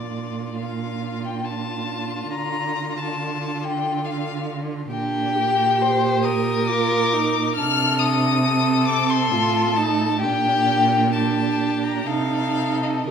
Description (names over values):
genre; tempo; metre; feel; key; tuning
classical, slow romantic movement for string quartet; 68 BPM; 3/4; rubato; G minor from 4.9 s; A4 = 442 Hz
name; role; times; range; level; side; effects
warm violin; melody; 0.0-13.1 s; D5 to F6; -23 LUFS; left 5 dB; none
rich violin; second line; 0.0-13.1 s; F4 to C5; -27 LUFS; left 1 dB; none
dark viola; accompaniment; 0.0-13.1 s; C4 to G4; -26 LUFS; right 4 dB; none
rich cello; bass; 0.0-13.1 s; A2 to D3; -25 LUFS; right 4 dB; none
room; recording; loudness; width
moderate scoring stage reverb, RT60 2.1 s; minimal, uncompressed stereo recording; -19 LUFS; side -7 dB against mid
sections
0.0-13.1 A section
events
none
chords
0.0 Bb; 2.3 Dm; 4.9 Gm/Bb; 7.6 Adim/C; 10.2 Gm/Bb; 12.1 Adim/C